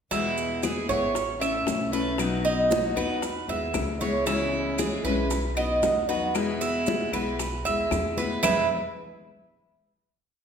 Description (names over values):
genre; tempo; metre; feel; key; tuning
latin, Cuban son and guajira; 115 BPM; 4/4; straight; E major; A4 = 440 Hz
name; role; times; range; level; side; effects
picked steel-string acoustic guitar; accompaniment; 0.1-8.6 s; E2 to F#4; -28 LUFS; left 3 dB; none
Cuban tres; arpeggios; 0.1-8.7 s; D#4 to E5; -27 LUFS; right 4 dB; none
upright bass; bass; 0.1-8.7 s; A1 to E2; -36 LUFS; equal; none
bongos; percussion; 0.1-8.6 s; none; -35 LUFS; left 5 dB; none
congas; percussion; 0.1-8.6 s; none; -36 LUFS; left 2 dB; none
maracas; percussion; 0.1-8.6 s; none; -39 LUFS; right 6 dB; none
claves; percussion; 0.6-8.6 s; none; -38 LUFS; left 7 dB; none
room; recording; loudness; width
wet recital hall reverb, RT60 1.3 s; recorded in a church or concert hall; -23 LUFS; side -7 dB against mid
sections
0.1-8.4 A section; 8.4-10.4 final chord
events
none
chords
0.1 E; 1.2 A; 2.2 B; 3.2 E; 4.3 C#m; 5.3 B; 6.4 E; 8.4 E5